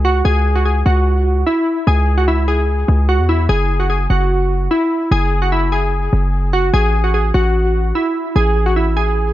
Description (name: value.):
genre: hip hop, trap.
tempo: 148 BPM.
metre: 4/4.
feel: half-time.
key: C# minor.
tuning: A4 = 439 Hz.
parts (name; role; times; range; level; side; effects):
glassy digital keys; melody; 0.0-9.3 s; E4 to G#4; -17 LUFS; equal; chorus, low-pass filter, digital delay.
hard-hitting 808-style bass; bass; 0.0-9.3 s; F#1 to E2; -15 LUFS; equal; none.
room: small room ambience.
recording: none.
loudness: -13 LUFS.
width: side -14 dB against mid.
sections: 0.0-9.3 A section.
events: none.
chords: 0.0 C#5; 3.5 F#sus2; 6.7 A5.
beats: | 0.25 0.66 1.06 1.47 | 1.87 2.28 2.68 3.09 | 3.49 3.90 4.30 4.71 | 5.11 5.52 5.92 6.33 | 6.74 7.14 7.55 7.95 | 8.36 8.76 9.17.